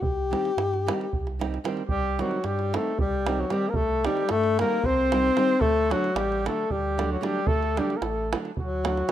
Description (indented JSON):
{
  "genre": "balkan folk, Balkan wedding band",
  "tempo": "226 BPM (eighths)",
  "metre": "7/8",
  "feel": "straight",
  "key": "C dorian sharp4",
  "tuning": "A4 = 440 Hz",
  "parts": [
    { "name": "warm alto saxophone", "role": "melody", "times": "0.0-9.1 s", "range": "F#3 to G4", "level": "-26 LUFS", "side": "left 3 dB", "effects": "none" },
    { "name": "sub bass with octave", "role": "bass", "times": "0.0-9.0 s", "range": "A1 to G2", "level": "-30 LUFS", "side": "right 1 dB", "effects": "none" },
    { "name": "davul", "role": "percussion", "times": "0.0-9.1 s", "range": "none", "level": "-31 LUFS", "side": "right 3 dB", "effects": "none" },
    { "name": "nylon-string guitar", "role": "accompaniment", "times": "0.3-9.1 s", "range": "D3 to Eb4", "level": "-32 LUFS", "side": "right 4 dB", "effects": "none" },
    { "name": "clear trumpet", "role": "second line", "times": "1.9-9.1 s", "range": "F#4 to C5", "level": "-31 LUFS", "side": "right 5 dB", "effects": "none" }
  ],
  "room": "light reverb, small room ambience",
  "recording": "rough home demo mix",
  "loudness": "-23 LUFS",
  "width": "side -11 dB against mid",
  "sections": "0.0-1.9 A section; 1.9-9.1 A section",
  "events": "none",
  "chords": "0.0 Cm; 5.6 D"
}